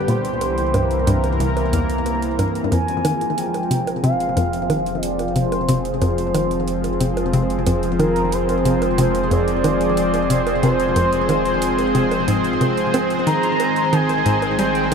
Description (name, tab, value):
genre	ambient, sequencer-driven space music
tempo	91 BPM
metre	4/4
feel	straight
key	F dorian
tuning	A4 = 441 Hz
part	expressive synth lead	melody	0.0-14.9 s	Bb4 to Bb5	-24 LUFS	right 1 dB	analog chorus, ping-pong delay
part	lush unison pad	sustained chords	0.0-14.9 s	Eb3 to C5	-21 LUFS	equal	chorus
part	round analog bass	bass	0.0-14.9 s	F1 to C2	-28 LUFS	equal	none
part	hollow square pluck	riff	0.1-14.9 s	C2 to C4	-22 LUFS	left 1 dB	chorus, ping-pong delay
part	electronic hi-hat and bongos	percussion	0.1-14.9 s	none	-31 LUFS	right 5 dB	ping-pong delay
part	bubbling stepped-filter texture	texture	3.4-14.9 s	Ab4	-31 LUFS	right 5 dB	chorus, built-in reverb
room	wet huge ambient reverb, RT60 9.2 s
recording	none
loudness	-17 LUFS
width	side -6 dB against mid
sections	0.0-2.7 A section; 2.7-14.9 B section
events	none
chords	0.1 C7; 2.7 Fm; 13.3 Ab